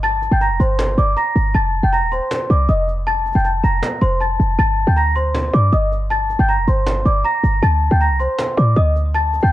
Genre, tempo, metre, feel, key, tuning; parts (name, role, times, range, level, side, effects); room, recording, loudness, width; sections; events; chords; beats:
hip hop, trap; 158 BPM; 4/4; half-time; G minor; A4 = 440 Hz
large celesta; melody; 0.0-9.5 s; C5 to Bb6; -18 LUFS; left 1 dB; ping-pong delay
short 808-style bass; bass; 0.0-9.5 s; Eb1 to A2; -16 LUFS; equal
cajon; drums; 0.0-9.5 s; -28 LUFS; right 1 dB
small room ambience; worn, warbling old tape, cassette tape, warbly pitch drift; -14 LUFS; side -14 dB against mid
0.0-9.5 A section
0.0 Gm; 1.5 F; 4.6 Gm; 7.6 Csus2
| 0.03 0.41 0.79 1.17 | 1.55 1.93 2.31 2.69 | 3.07 3.45 3.83 4.21 | 4.59 4.97 5.35 5.73 | 6.11 6.49 6.87 7.25 | 7.62 8.01 8.38 8.76 | 9.14